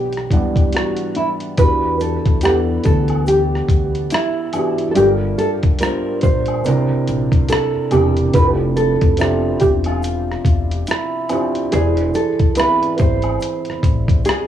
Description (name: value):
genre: lo-fi hip hop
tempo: 71 BPM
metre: 4/4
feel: swing 61% on 16ths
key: E phrygian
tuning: A4 = 440 Hz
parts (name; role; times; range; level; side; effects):
- nylon-string guitar; melody; 0.0-14.5 s; E4 to C5; -19 LUFS; right 1 dB; low-pass filter, cassette tape, tape echo
- felt-muted upright piano; accompaniment; 0.0-14.5 s; C3 to F#5; -21 LUFS; right 2 dB; cassette tape, low-pass filter
- upright bass; bass; 0.0-14.2 s; E1 to E2; -21 LUFS; left 1 dB; none
- dusty soul sampler-style drum kit; drums; 0.1-14.5 s; hi-hat, kick drum, rim click; -17 LUFS; left 1 dB; cassette tape
- egg shaker and woodblock; percussion; 1.6-14.5 s; none; -32 LUFS; left 2 dB; none
room: light reverb, small room ambience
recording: home recording on cassette, studio ambience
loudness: -14 LUFS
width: side -10 dB against mid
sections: 0.0-1.6 A section; 1.6-14.5 B section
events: none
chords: 0.0 Em9; 5.0 Gm7; 6.7 C9; 8.3 Fmaj13; 11.7 E7b13